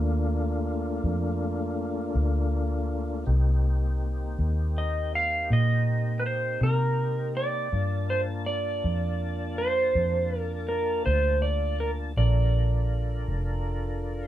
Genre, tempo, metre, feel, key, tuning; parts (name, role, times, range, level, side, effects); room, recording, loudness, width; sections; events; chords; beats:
slow blues; 54 BPM (dotted quarters); 12/8; straight; G minor; A4 = 437 Hz
tonewheel organ; sustained chords; 0.0-14.3 s; A3 to A5; -34 LUFS; left 2 dB; slow rotary speaker, chorus vibrato
vintage muted fingered electric bass; bass; 0.0-14.3 s; F1 to C3; -26 LUFS; equal
clean lap steel guitar; melody; 4.8-14.3 s; Bb4 to F5; -28 LUFS; right 2 dB
moderate small room ambience, RT60 0.5 s; band playing live in one room; -24 LUFS; side -12 dB against mid
0.0-14.3 A section
0.0 Gm7 (rootless); 3.3 Cm7; 7.7 Gm7
1.04 2.16 | 3.28 4.39 5.51 6.62 | 7.73 8.84 9.95 11.06 | 12.17 13.28